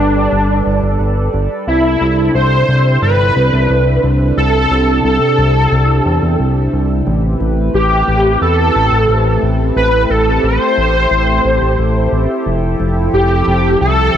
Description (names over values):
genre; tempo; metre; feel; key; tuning
synthwave; 89 BPM; 4/4; straight; A minor; A4 = 440 Hz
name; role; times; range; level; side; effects
wide unison lead; melody; 0.0-14.2 s; D4 to C5; -14 LUFS; equal; ensemble chorus, cassette tape, digital delay
chorused pulse-width pad; sustained chords; 0.0-14.2 s; C3 to D5; -18 LUFS; equal; none
fat analog bass; bass; 0.0-14.2 s; F1 to E2; -15 LUFS; equal; tube saturation
room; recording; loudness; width
moderate plate reverb, RT60 3.6 s; bright 1980s-style digital production; -11 LUFS; side -9 dB against mid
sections
0.0-7.1 A section; 7.1-14.2 B section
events
none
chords
0.0 Gadd9; 1.7 C6; 7.1 Am7; 12.5 Fmaj7